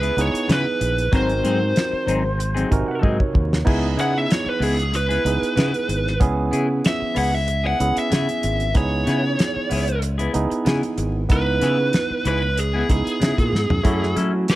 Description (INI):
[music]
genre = straight-eighth soul blues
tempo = 94 BPM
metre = 4/4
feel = straight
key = C# dorian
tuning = A4 = 440 Hz
[part]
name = lead guitar through a small cranked amp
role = melody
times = 0.0-14.6 s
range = G#4 to F#5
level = -24 LUFS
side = right 1 dB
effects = overdrive
[part]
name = clean electric guitar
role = stabs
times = 0.0-14.4 s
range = F#3 to A4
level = -28 LUFS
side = left 4 dB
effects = phaser
[part]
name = modern bright fingered electric bass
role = bass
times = 0.0-14.4 s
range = G#1 to F#3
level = -23 LUFS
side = equal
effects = none
[part]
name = damped 70s drum kit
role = drums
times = 0.0-14.6 s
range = crash cymbal, hi-hat, kick drum, snare drum, toms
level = -22 LUFS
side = equal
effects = none
[part]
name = barky tine electric piano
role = accompaniment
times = 0.2-14.6 s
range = B#2 to G#5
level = -25 LUFS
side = right 3 dB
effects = overdrive
[sound]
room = light reverb, small room ambience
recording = vinyl crackle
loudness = -18 LUFS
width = side -16 dB against mid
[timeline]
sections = 0.0-3.7 A section; 3.7-14.6 B section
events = tine electric piano fill 2.4-3.7; drum fill 3.0-3.7, 13.5-13.9; lead electric guitar solo 3.7-14.6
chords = 0.0 C#m7; 1.1 G#7; 3.7 C#m7; 13.9 F#m7